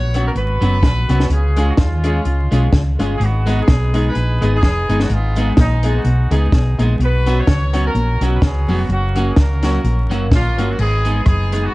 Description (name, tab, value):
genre	ska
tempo	126 BPM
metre	4/4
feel	swing 56% on 8ths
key	G# dorian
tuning	A4 = 443 Hz
part	clear horn section	melody	0.0-11.7 s	G#3 to C#5	-23 LUFS	equal	none
part	mellow electric guitar	riff	0.0-11.4 s	E#2 to D#3	-26 LUFS	left 2 dB	none
part	hollow-body short-scale fingered electric bass	bass	0.0-11.7 s	E#1 to D#2	-16 LUFS	equal	none
part	clean electric guitar	accompaniment	0.1-11.7 s	F#3 to G#4	-25 LUFS	right 2 dB	none
part	clear upright piano	stabs	0.1-10.7 s	F#3 to G#4	-25 LUFS	left 3 dB	none
part	compact cocktail drum kit	drums	0.1-11.6 s	crash cymbal, hi-hat, kick drum, rim click, snare drum	-16 LUFS	equal	vintage 12-bit sampler grit
room	light reverb, small room ambience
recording	dark, warm production, vinyl crackle, faint mains hum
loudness	-13 LUFS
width	side -20 dB against mid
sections	0.0-10.8 A section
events	none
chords	0.0 Bsus2; 1.3 C#; 3.2 G#m; 7.0 Bsus2; 8.9 F#; 10.8 G#m